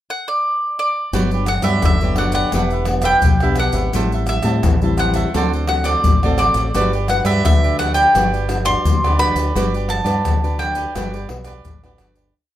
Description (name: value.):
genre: samba and choro.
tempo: 86 BPM.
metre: 4/4.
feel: straight.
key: G major.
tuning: A4 = 443 Hz.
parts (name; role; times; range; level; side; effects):
bowl-back mandolin; melody; 0.1-11.3 s; D5 to C6; -19 LUFS; equal; none.
cavaquinho; accompaniment; 1.1-12.3 s; D4 to A5; -26 LUFS; right 6 dB; none.
nylon-string guitar; accompaniment; 1.1-12.3 s; G2 to B4; -24 LUFS; left 3 dB; none.
deep dub fingered electric bass; bass; 1.1-12.3 s; E1 to A2; -21 LUFS; equal; none.
maracas, surdo, pandeiro and tamborim; percussion; 1.1-12.3 s; none; -20 LUFS; left 1 dB; none.
room: light reverb.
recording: none.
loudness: -15 LUFS.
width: side -12 dB against mid.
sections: 0.0-1.1 pickup bar; 1.1-12.4 A section.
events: fade-out 9.6-12.4.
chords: 0.0 N.C.; 1.1 Gmaj7; 2.5 Em7; 3.9 Am7; 5.3 D7; 6.8 Gmaj7.